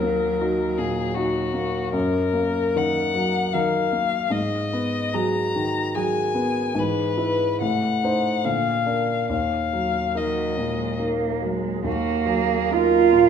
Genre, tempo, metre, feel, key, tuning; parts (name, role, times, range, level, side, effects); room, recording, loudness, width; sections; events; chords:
classical, slow romantic movement for piano trio; 68-80 BPM; 3/4; rubato; Eb minor; A4 = 439 Hz
rich violin; melody; 0.0-13.3 s; Gb4 to Bb5; -25 LUFS; left 7 dB
rich cello; second line; 0.0-13.3 s; C3 to F4; -24 LUFS; right 8 dB
clear concert grand piano; accompaniment; 0.0-13.3 s; Eb2 to C5; -24 LUFS; equal
wet recital hall reverb, RT60 1.4 s; minimal, uncompressed stereo recording; -20 LUFS; side -7 dB against mid
0.0-11.9 A section; 11.9-13.3 A section
0.0 Ebm; 1.9 Ebm/Gb; 4.3 Abm7; 6.8 E/G#; 7.6 Adim7; 8.4 Bb; 9.3 Ebm